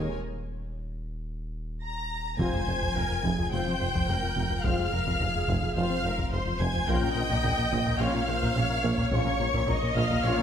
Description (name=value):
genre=cinematic, hybrid orchestral and electronic film score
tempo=107 BPM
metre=4/4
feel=straight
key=F minor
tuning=A4 = 440 Hz
part: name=rich symphonic violin section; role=melody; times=0.0-10.4 s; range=Ab5 to Bb6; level=-34 LUFS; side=left 2 dB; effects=none
part: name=warm symphonic violin section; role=second line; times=0.0-10.4 s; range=C5 to Bb5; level=-33 LUFS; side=left 2 dB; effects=none
part: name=warm studio viola section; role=accompaniment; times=0.0-10.4 s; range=Bb3 to Eb5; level=-35 LUFS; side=right 1 dB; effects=none
part: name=warm French horn section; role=sustained chords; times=0.0-10.4 s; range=Bb3 to Ab4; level=-36 LUFS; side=left 5 dB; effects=none
part: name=round analog bass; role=riff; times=0.0-10.4 s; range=F2 to Bb3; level=-33 LUFS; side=left 2 dB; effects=none
part: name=clear tuba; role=bass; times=0.0-10.3 s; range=F1 to Bb1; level=-38 LUFS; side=right 3 dB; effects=none
part: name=dark symphonic cello section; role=bass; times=0.0-10.4 s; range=F2 to Ab3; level=-36 LUFS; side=right 2 dB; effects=none
part: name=saturated sub bass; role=bass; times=0.0-10.4 s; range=Eb1 to Bb1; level=-37 LUFS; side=equal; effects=none
part: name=warm symphonic double bass section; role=bass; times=0.0-10.3 s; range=F1 to Bb1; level=-36 LUFS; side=right 3 dB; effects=none
part: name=thumb-piano-like synth pluck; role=arpeggios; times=2.4-10.4 s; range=F3 to Bb4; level=-35 LUFS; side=right 2 dB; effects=chorus
part: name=taiko ensemble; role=drums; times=2.4-10.4 s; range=none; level=-34 LUFS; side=equal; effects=none
room=moderate scoring stage reverb, RT60 1.5 s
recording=none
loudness=-25 LUFS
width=side -8 dB against mid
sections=0.0-2.4 A section; 2.4-10.4 B section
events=break 0.2-2.4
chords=0.0 Absus2/Eb; 2.4 Fm; 6.9 Bbm